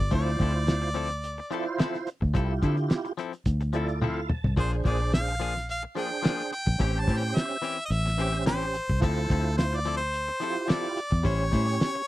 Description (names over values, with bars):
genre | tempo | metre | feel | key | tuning
straight-eighth soul blues | 108 BPM | 4/4 | swing 54% on 16ths | D minor | A4 = 440 Hz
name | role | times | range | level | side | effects
clear harmonica | melody | 0.0-12.1 s | A4 to A5 | -31 LUFS | equal | slapback echo
direct-recorded clean electric guitar | stabs | 0.0-12.0 s | E3 to B#4 | -34 LUFS | left 8 dB | none
fingered electric bass | bass | 0.0-11.8 s | G1 to D3 | -27 LUFS | equal | none
tonewheel organ | accompaniment | 0.1-12.0 s | C#4 to A5 | -32 LUFS | right 4 dB | slow rotary speaker, overdrive, chorus vibrato
cloth-damped thuddy drum kit | drums | 0.1-12.1 s | hi-hat, kick drum, snare drum, toms | -26 LUFS | equal | none
room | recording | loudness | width
little or no reverb | dry, close 1970s-style studio recording | -25 LUFS | side -16 dB against mid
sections
0.0-12.1 A section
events
tonewheel organ fill 3.5-4.6; drum fill 4.0-4.6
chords
0.1 Dm9; 4.6 Bb7; 6.8 A7#9; 9.0 Dm9; 11.2 A7#9